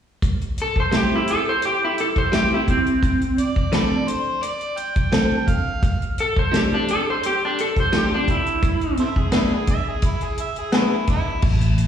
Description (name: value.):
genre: straight-eighth soul blues.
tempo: 86 BPM.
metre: 4/4.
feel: straight.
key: unclear.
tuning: A4 = 441 Hz.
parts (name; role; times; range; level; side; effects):
warm soul drum kit; drums; 0.2-11.9 s; crash cymbal, hi-hat, kick drum, snare drum; -22 LUFS; equal; slapback echo.
electric slide guitar; melody; 0.6-9.0 s; C4 to C5; -21 LUFS; equal; plate reverb, slapback echo, analog delay.
direct-recorded clean electric guitar; stabs; 0.9-11.0 s; F3 to A4; -24 LUFS; left 1 dB; phaser, plate reverb, slapback echo.
overdriven harmonica; second line; 3.4-11.4 s; A3 to G5; -26 LUFS; right 1 dB; plate reverb, slapback echo.
vintage muted fingered electric bass; bass; 11.4-11.8 s; A1; -17 LUFS; equal; none.
room: moderate club reverb, RT60 0.8 s.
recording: live gig heard through the venue's PA, recital hall reverb, small room ambience.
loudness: -18 LUFS.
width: side -9 dB against mid.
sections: 0.2-11.4 A section.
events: none.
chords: 0.2 C/G; 3.0 Dm7; 8.6 Bmadd11.